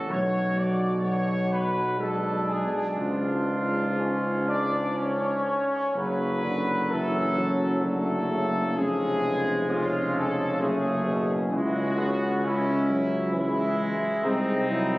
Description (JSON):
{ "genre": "classical, hymn-like piece for brass band", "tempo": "59-67 BPM", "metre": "3/4", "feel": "rubato", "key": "F# minor", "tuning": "A4 = 439 Hz", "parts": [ { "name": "dark trumpet section", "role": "melody", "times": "0.0-15.0 s", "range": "D#4 to D5", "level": "-29 LUFS", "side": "left 1 dB", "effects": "none" }, { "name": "clear flugelhorn", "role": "second line", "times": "0.0-15.0 s", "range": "F#3 to F#4", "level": "-33 LUFS", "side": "right 1 dB", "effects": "none" }, { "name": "mellow tuba", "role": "bass", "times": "0.0-15.0 s", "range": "E#1 to C#2", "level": "-28 LUFS", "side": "equal", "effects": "none" }, { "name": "warm euphonium", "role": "accompaniment", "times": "0.1-15.0 s", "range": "G#2 to G#3", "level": "-31 LUFS", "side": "equal", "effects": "none" }, { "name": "warm trombone section", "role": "accompaniment", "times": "0.1-15.0 s", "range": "F#3 to E4", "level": "-32 LUFS", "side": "left 1 dB", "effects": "none" } ], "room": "wet church reverb, RT60 3.8 s", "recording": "recorded on a phone in the room, studio reverb", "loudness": "-23 LUFS", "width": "side -19 dB against mid", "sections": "0.0-6.0 A section; 6.0-15.0 B section", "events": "none", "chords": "0.1 B5; 2.0 G#dim/B; 3.0 C#; 6.0 F#m; 8.8 C#/E#; 10.6 F#m; 11.5 C#m; 14.2 G#7/B#" }